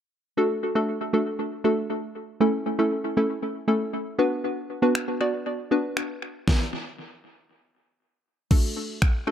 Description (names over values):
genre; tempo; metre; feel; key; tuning
dance-pop; 118 BPM; 4/4; straight; D major; A4 = 439 Hz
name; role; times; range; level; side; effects
hollow square pluck; accompaniment; 0.4-9.3 s; A3 to D5; -24 LUFS; equal; chorus, sidechain pumping, tape echo
pop drum kit; drums; 5.0-9.1 s; crash cymbal, finger snaps, kick drum, snare drum; -23 LUFS; equal; overdrive, tape echo
room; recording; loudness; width
moderate spring reverb, RT60 1.4 s, digital ambience; echo-heavy mix; -23 LUFS; side -9 dB against mid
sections
0.4-8.5 A section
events
stop 6.5-8.5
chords
0.4 D; 2.4 A; 4.2 Bm; 6.5 N.C.; 8.5 D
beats
| 0.37 0.88 1.39 1.90 | 2.41 2.92 3.42 3.93 | 4.44 4.95 5.46 5.97 | 6.48 6.98 7.49 8.00 | 8.51 9.02